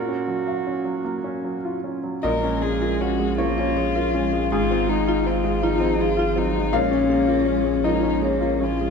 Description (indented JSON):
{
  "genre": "neoclassical piano and strings",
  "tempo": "53 BPM (dotted quarters)",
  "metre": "6/8",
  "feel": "rubato",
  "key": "Bb minor",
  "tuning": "A4 = 436 Hz",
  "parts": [
    { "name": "dark cello", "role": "second line", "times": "0.0-8.9 s", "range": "F3 to Gb4", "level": "-29 LUFS", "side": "right 6 dB", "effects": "none" },
    { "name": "bright upright piano", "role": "accompaniment", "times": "0.0-8.9 s", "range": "Ab2 to F5", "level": "-24 LUFS", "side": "right 1 dB", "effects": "none" },
    { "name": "rich violin", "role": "melody", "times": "2.2-8.9 s", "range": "Db4 to Bb4", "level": "-23 LUFS", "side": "left 7 dB", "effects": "none" },
    { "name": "marimba with hard mallets", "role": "arpeggios", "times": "2.2-8.7 s", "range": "F4 to Ab5", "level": "-30 LUFS", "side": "right 3 dB", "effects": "none" },
    { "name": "saturated sub bass", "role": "bass", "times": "2.2-8.9 s", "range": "Ab1 to Bb1", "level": "-28 LUFS", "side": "left 1 dB", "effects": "none" }
  ],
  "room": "wet scoring stage reverb, RT60 1.6 s",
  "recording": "recorded in a church or concert hall",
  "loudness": "-20 LUFS",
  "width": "side -5 dB against mid",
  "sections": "0.0-2.2 A section; 2.2-8.9 A section",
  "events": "none",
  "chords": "0.0 Gbmaj7/Bb; 2.2 Bbm7; 4.5 Fm/Ab; 6.7 Bbm7"
}